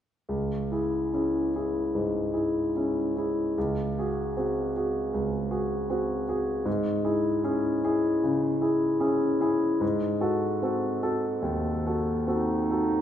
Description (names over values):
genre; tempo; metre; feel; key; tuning
classical, romantic movement for piano and orchestra; 76 BPM; 4/4; uneven beats, rubato; C# minor; A4 = 439 Hz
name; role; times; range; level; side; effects
warm grand piano; melody; 0.3-13.0 s; C#2 to A4; -25 LUFS; equal; none
warm clarinet; second line; 12.3-13.0 s; D#4; -27 LUFS; right 4 dB; none
room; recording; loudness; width
wet recital hall reverb, RT60 1.6 s; recorded in a church or concert hall; -25 LUFS; side -10 dB against mid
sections
0.3-13.0 A section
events
none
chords
0.3 C#m; 3.6 G#7/C#; 6.7 C#m/G#; 9.8 G#7b9